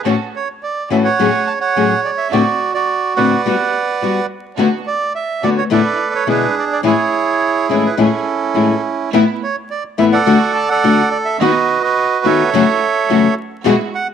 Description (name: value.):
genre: tango.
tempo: 106 BPM.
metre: 4/4.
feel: rubato.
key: A major.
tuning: A4 = 440 Hz.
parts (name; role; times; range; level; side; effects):
nylon-string guitar; accompaniment; 0.1-13.7 s; E2 to G#4; -15 LUFS; left 6 dB; none.
rich studio string section; stabs; 0.1-13.9 s; A2 to A4; -25 LUFS; right 8 dB; none.
bandoneon; melody; 0.4-14.1 s; C#4 to A5; -16 LUFS; right 5 dB; none.
room: moderate spring reverb, RT60 1.5 s.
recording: 1960s-style stereo with parts hard left and right, vinyl crackle.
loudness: -13 LUFS.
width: side -8 dB against mid.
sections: 0.0-9.1 A section; 9.1-14.1 B section.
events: none.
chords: 0.1 A6; 1.2 F#madd9/A; 2.3 D7/A; 3.5 Gmaj7; 4.6 D6; 5.7 E7sus4; 6.3 E7; 6.8 Amaj7; 9.1 Asus2; 10.3 D; 11.4 B/D#; 12.5 F#m7.